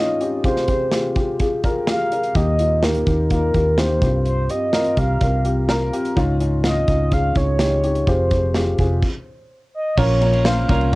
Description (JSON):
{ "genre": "piano-driven pop", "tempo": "126 BPM", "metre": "4/4", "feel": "straight", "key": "F minor", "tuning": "A4 = 440 Hz", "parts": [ { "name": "mellow horn-like synth lead", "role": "melody", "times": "0.0-10.9 s", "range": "Bb4 to F5", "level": "-22 LUFS", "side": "equal", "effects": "chorus, cassette tape" }, { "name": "dark upright piano", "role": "accompaniment", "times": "0.0-11.0 s", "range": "G2 to C5", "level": "-22 LUFS", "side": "left 2 dB", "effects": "cassette tape" }, { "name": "modern studio drum kit", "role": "drums", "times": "0.2-11.0 s", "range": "crash cymbal, hi-hat, kick drum, ride cymbal, snare drum", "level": "-22 LUFS", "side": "equal", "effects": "cassette tape" }, { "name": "vintage muted fingered electric bass", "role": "bass", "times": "2.4-11.0 s", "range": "F1 to Eb2", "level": "-20 LUFS", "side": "equal", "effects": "none" }, { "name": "twelve-string electric guitar", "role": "riff", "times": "10.0-11.0 s", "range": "Bb2 to Bb4", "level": "-29 LUFS", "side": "right 4 dB", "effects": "cassette tape" } ], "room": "moderate booth ambience, RT60 0.2 s", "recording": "home recording on cassette", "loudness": "-16 LUFS", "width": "side -20 dB against mid", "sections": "0.0-10.0 A section", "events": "stop 9.0-10.0", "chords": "0.4 Fmadd9; 2.4 Eb; 4.0 Csus4; 6.2 Dbadd9; 8.1 Fmadd9; 10.0 Bbm", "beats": "| 0.45 0.92 1.40 1.88 | 2.35 2.83 3.30 3.78 | 4.26 4.73 5.21 5.69 | 6.16 6.64 7.12 7.59 | 8.07 8.55 9.02 9.50 | 9.97 10.45 10.93" }